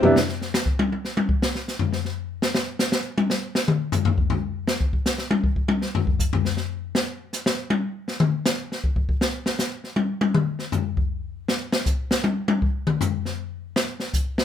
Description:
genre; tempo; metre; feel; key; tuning
jazz; 159 BPM; 3/4; swing 65% on 8ths; none; none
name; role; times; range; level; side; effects
open jazz drum kit; drums; 0.0-14.4 s; hi-hat, kick drum, snare drum, toms; -22 LUFS; left 2 dB; none
room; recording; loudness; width
light reverb; minimal, uncompressed stereo recording; -22 LUFS; side -9 dB against mid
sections
0.1-9.2 A section; 9.2-14.4 A section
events
drum fill 0.0; drum solo 0.1-14.4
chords
none

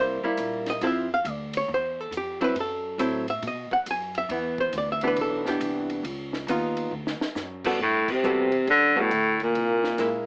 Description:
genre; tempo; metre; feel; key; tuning
jazz, small-group swing and bop; 138 BPM; 4/4; swing 66% on 8ths; unclear; A4 = 440 Hz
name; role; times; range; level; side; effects
archtop guitar, miked and amplified; accompaniment; 0.0-10.3 s; E3 to Ab5; -25 LUFS; equal; none
upright bass; bass; 0.0-10.3 s; Bb1 to B2; -37 LUFS; equal; none
compact cocktail drum kit; drums; 0.4-10.1 s; crash cymbal, hi-hat, kick drum, ride cymbal, snare drum; -36 LUFS; equal; none
warm baritone saxophone; melody; 7.8-10.2 s; A2 to D3; -21 LUFS; equal; none
breathy trombone; second line; 7.8-10.2 s; A3 to D4; -30 LUFS; equal; none
room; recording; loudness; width
moderate studio ambience, RT60 0.5 s; AM radio sound; -23 LUFS; side -31 dB against mid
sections
0.0-7.8 A section; 7.8-10.3 B section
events
drum fill 6.9-7.4; band accent 8.0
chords
0.0 C7; 0.8 Fmaj7(no3); 2.6 F#m7b5; 3.4 B5; 4.3 Em7; 6.0 Db9; 6.9 D; 7.8 Gmaj9; 9.5 Caug7

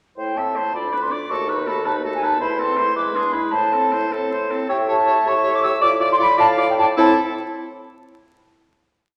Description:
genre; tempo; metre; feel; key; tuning
quick classical-period movement for wind quintet; 106 BPM (dotted quarters); 6/8; straight; A minor; A4 = 439 Hz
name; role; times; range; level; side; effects
mellow concert flute; melody; 0.2-7.2 s; G5 to E6; -22 LUFS; equal; none
clear oboe; second line; 0.2-7.1 s; G#4 to E5; -27 LUFS; equal; none
bright clarinet; accompaniment; 0.2-7.1 s; C4 to F5; -28 LUFS; equal; none
warm French horn; accompaniment; 0.2-7.1 s; G#3 to G4; -34 LUFS; equal; none
mellow bassoon; bass; 0.2-7.1 s; D2 to A2; -27 LUFS; equal; none
room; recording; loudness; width
wet recital hall reverb, RT60 1.6 s; vinyl crackle; -19 LUFS; mono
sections
0.2-4.7 A section; 4.7-7.0 coda; 7.0-8.2 final chord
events
none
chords
0.2 Am; 0.7 Bdim/D; 1.3 B7/D#; 2.4 Am/E; 3.0 E7; 3.5 Am; 4.7 A7; 5.8 Dm/A; 7.0 Am

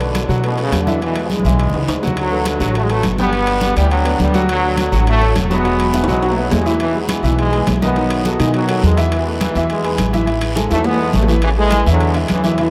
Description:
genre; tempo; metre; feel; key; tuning
latin, salsa; 207 BPM; 4/4; straight; unclear; A4 = 440 Hz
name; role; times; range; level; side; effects
bright trombone section; melody; 0.0-12.7 s; F#2 to B3; -21 LUFS; equal; none
clear grand piano; accompaniment; 0.0-12.7 s; D#3 to G5; -23 LUFS; equal; none
upright bass; bass; 0.0-12.7 s; E1 to B2; -21 LUFS; equal; none
congas; percussion; 0.0-12.7 s; none; -26 LUFS; equal; none
timbales; percussion; 0.0-12.7 s; none; -29 LUFS; equal; none
guiro; percussion; 0.2-12.7 s; none; -34 LUFS; equal; none
room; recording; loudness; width
wet huge ambient reverb, RT60 7.5 s; in a vast, echoing space; -16 LUFS; mono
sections
0.0-2.2 A section; 2.2-11.4 B section; 11.4-12.7 C section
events
drum fill 1.3-2.2, 5.9-6.8, 10.6-11.4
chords
0.0 Bm7; 1.0 E; 2.2 D6; 3.3 Gmaj7; 4.5 Dmaj7; 5.6 Eadd9; 6.8 E; 8.0 B7; 9.1 Esus4; 9.7 E; 10.3 A5

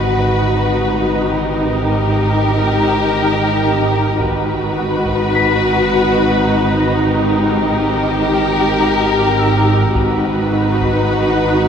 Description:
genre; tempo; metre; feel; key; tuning
cinematic, suspense film score; 104 BPM; 5/4; straight; G# minor; A4 = 440 Hz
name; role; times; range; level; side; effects
rich studio violin section; melody; 0.0-11.7 s; A#4 to B4; -21 LUFS; left 3 dB; none
warm studio violin section; second line; 0.0-11.7 s; F#4 to G4; -19 LUFS; left 2 dB; none
dark symphonic viola section; accompaniment; 0.0-11.7 s; D#4; -20 LUFS; equal; none
pulsing gated texture; sustained chords; 0.0-11.7 s; D#4 to D#5; -23 LUFS; right 2 dB; chorus, built-in reverb
rich studio cello section; bass; 0.0-11.7 s; G#2; -21 LUFS; right 1 dB; none
rich studio double bass section; bass; 0.0-11.7 s; G#1; -23 LUFS; right 3 dB; none
metallic inharmonic drone; drone; 0.0-11.7 s; G#1; -25 LUFS; equal; chorus, built-in reverb
taiko ensemble; drums; 4.2-5.3, 10.0-11.1 s; none; -27 LUFS; equal; none
large celesta; texture; 5.3-11.7 s; E6 to B6; -25 LUFS; left 7 dB; none
room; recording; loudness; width
wet cathedral reverb, RT60 4.6 s; none; -13 LUFS; side -7 dB against mid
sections
0.0-11.7 A section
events
none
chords
0.0 G#m7; 1.3 D#/G#; 4.2 G#m7; 7.1 D#/G#; 9.9 G#m7

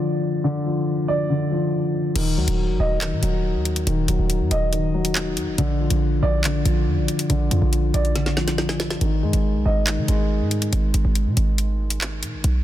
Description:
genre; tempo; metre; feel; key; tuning
hip hop, drill; 140 BPM; 4/4; half-time; Eb harmonic minor; A4 = 440 Hz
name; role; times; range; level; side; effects
dark concert grand piano; accompaniment; 0.0-12.5 s; D3 to Eb5; -23 LUFS; left 2 dB; low-pass filter
short 808-style bass; bass; 2.2-12.6 s; Eb1 to Eb3; -21 LUFS; right 1 dB; none
drill drum kit; drums; 2.2-12.5 s; crash cymbal, handclaps, hi-hat, snare drum; -27 LUFS; equal; overdrive
room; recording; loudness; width
digital ambience; dense, heavily limited modern master; -19 LUFS; side -13 dB against mid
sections
0.0-2.2 A section; 2.2-12.6 B section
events
drum fill 8.2-9.0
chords
0.0 Dm; 2.2 Ebm; 5.6 Bb; 9.0 Ab5

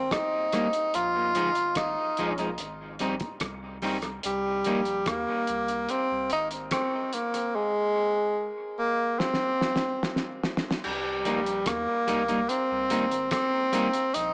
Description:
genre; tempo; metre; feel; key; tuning
dub reggae; 73 BPM; 4/4; straight; C minor; A4 = 442 Hz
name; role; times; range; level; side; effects
warm tenor saxophone; melody; 0.0-14.3 s; G3 to F4; -29 LUFS; equal; tape echo
soft dub sub bass; bass; 0.0-14.3 s; G1 to Eb2; -45 LUFS; equal; none
cloth-damped thuddy drum kit; drums; 0.1-14.3 s; crash cymbal, hi-hat, kick drum, rim click, snare drum; -35 LUFS; equal; none
electric guitar at the edge of break-up; accompaniment; 0.5-4.8, 11.3-13.9 s; F3 to Eb4; -34 LUFS; equal; tape echo
room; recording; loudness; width
moderate spring reverb, RT60 2.6 s; small speaker sound; -28 LUFS; mono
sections
0.0-10.8 A section; 10.8-14.3 A section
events
drum fill 9.2-10.8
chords
0.0 Cm7 (rootless); 0.9 Bb7sus4; 2.6 Ab; 7.5 N.C.; 10.8 Cm7

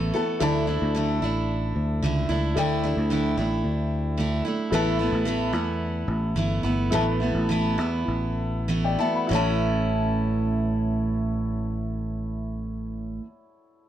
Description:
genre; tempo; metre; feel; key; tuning
acoustic pop; 95-111 BPM; 4/4; straight; A mixolydian; A4 = 442 Hz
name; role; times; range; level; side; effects
picked steel-string acoustic guitar; accompaniment; 0.0-13.3 s; A2 to A4; -26 LUFS; right 3 dB; none
warm baby grand piano; accompaniment; 0.0-13.9 s; E4 to B5; -30 LUFS; left 5 dB; none
fingered electric bass; bass; 0.0-13.2 s; G1 to E2; -27 LUFS; left 1 dB; none
room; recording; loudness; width
light reverb; worn, warbling old tape, cassette tape, warbly pitch drift; -23 LUFS; side -11 dB against mid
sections
0.0-9.3 A section; 9.3-13.9 B section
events
slowing down 4.7-9.3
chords
0.4 Dsus2; 4.7 Asus2; 9.3 A

